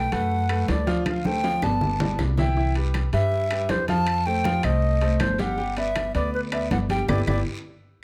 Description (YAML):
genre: latin, salsa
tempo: 159 BPM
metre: 4/4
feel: straight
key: G major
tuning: A4 = 440 Hz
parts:
  - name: bright baroque flute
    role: melody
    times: 0.0-7.4 s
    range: B4 to A5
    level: -28 LUFS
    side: equal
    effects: none
  - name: bright upright piano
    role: accompaniment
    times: 0.0-7.4 s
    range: E3 to G5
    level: -31 LUFS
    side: equal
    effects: none
  - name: upright bass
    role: bass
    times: 0.0-7.4 s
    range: G1 to G2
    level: -28 LUFS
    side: equal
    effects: none
  - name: congas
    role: percussion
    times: 0.1-7.4 s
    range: none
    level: -32 LUFS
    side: equal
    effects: none
  - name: guiro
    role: percussion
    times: 0.1-7.4 s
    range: none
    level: -45 LUFS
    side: equal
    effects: none
  - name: timbales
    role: percussion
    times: 0.1-7.4 s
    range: none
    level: -36 LUFS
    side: equal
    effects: none
  - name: claves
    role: percussion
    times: 0.5-7.4 s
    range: none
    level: -38 LUFS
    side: equal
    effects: none
room: light reverb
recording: close, detailed microphones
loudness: -24 LUFS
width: mono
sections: 0.0-8.0 A section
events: drum fill 1.1-2.6, 7.1-8.0; band accent 7.1-8.0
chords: 0.0 Bm7; 1.1 Dm7; 1.8 Gadd9; 2.6 Cmaj7; 4.1 F9; 5.6 G6